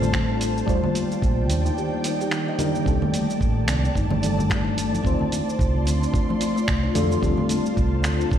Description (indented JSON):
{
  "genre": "sunset chillout",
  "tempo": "110 BPM",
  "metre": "4/4",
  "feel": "swing 57% on 16ths",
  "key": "C dorian",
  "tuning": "A4 = 440 Hz",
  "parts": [
    { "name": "mellow FM electric piano", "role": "accompaniment", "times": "0.0-8.4 s", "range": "Eb3 to D5", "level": "-27 LUFS", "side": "moving between left 4 dB and right 4 dB", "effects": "chorus, phaser, auto-pan, ping-pong delay" },
    { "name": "ethereal airy pad", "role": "sustained chords", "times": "0.0-8.4 s", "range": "Eb3 to C6", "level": "-29 LUFS", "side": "right 1 dB", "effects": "ensemble chorus, built-in reverb" },
    { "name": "kalimba", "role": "arpeggios", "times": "0.0-8.4 s", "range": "A3 to Eb5", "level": "-28 LUFS", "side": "left 4 dB", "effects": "ping-pong delay" },
    { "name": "woody fretless electric bass", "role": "bass", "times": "0.0-8.4 s", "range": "G1 to F2", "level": "-24 LUFS", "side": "right 1 dB", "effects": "wide subtle chorus" },
    { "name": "dusty soul sampler-style drum kit", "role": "drums", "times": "0.0-8.4 s", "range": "cabasa, congas, finger snaps, hi-hat", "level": "-28 LUFS", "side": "right 3 dB", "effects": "none" },
    { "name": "electronic kick drum", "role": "drums", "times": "0.1-8.4 s", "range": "none", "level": "-24 LUFS", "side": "right 1 dB", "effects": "none" },
    { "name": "congas and bongos", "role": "percussion", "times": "3.1-7.6 s", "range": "none", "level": "-33 LUFS", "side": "left 2 dB", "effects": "none" }
  ],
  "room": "moderate scoring stage reverb, RT60 1.6 s",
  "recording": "played on a big sound system in a bare room, large studio reverb",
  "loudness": "-20 LUFS",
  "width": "side -10 dB against mid",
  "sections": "0.0-8.4 A section",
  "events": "break 1.8-2.9",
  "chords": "0.0 G9sus4; 0.7 Ebmaj7; 2.9 Cm69; 5.0 Dm7; 7.2 G9sus4"
}